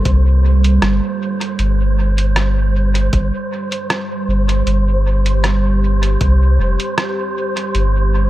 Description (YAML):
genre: ambient dub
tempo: 78 BPM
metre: 4/4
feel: swing 54% on 16ths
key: G minor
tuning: A4 = 440 Hz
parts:
  - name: deep dark ambient pad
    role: sustained chords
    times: 0.0-8.3 s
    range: G3 to F5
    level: -22 LUFS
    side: right 2 dB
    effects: chorus, built-in reverb
  - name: soft dub sub bass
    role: bass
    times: 0.0-8.3 s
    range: F1 to C2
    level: -14 LUFS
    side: equal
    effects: none
  - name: wind-like tuned noise texture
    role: texture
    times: 0.0-8.3 s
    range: C5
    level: -25 LUFS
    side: right 1 dB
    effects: built-in reverb
  - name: electronic kick drum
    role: drums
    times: 0.1-6.4 s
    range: none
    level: -19 LUFS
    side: equal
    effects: none
  - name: lo-fi sampler-style drum kit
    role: drums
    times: 0.1-7.9 s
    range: hi-hat, rim click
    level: -22 LUFS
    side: equal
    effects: overdrive, dub echo
room: little or no reverb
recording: echo-heavy mix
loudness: -13 LUFS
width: side -15 dB against mid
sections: 0.0-8.3 A section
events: none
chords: 0.0 Gm7; 7.7 Am7/G (rootless)